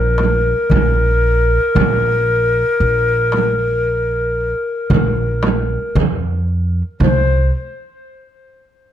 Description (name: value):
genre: Turkish makam ensemble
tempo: 114 BPM (eighths)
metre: 10/8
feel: straight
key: unclear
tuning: A4 = 440 Hz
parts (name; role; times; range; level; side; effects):
- breathy ney; melody; 0.0-7.5 s; Bb4 to C5; -17 LUFS; left 2 dB; tape echo
- upright bass; bass; 0.0-7.5 s; Bb1 to F2; -17 LUFS; right 1 dB; none
- darbuka; percussion; 0.2-7.5 s; none; -21 LUFS; left 2 dB; none
- frame drum; percussion; 0.2-7.5 s; none; -20 LUFS; right 4 dB; none
room: little or no reverb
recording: close, detailed microphones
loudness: -14 LUFS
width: side -10 dB against mid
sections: 0.0-7.0 A section; 7.0-8.9 B section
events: none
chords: none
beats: 0.18 0.71 1.23 | 1.75 2.28 2.80 3.33 3.85 4.38 4.90 5.43 5.95 6.48 | 7.00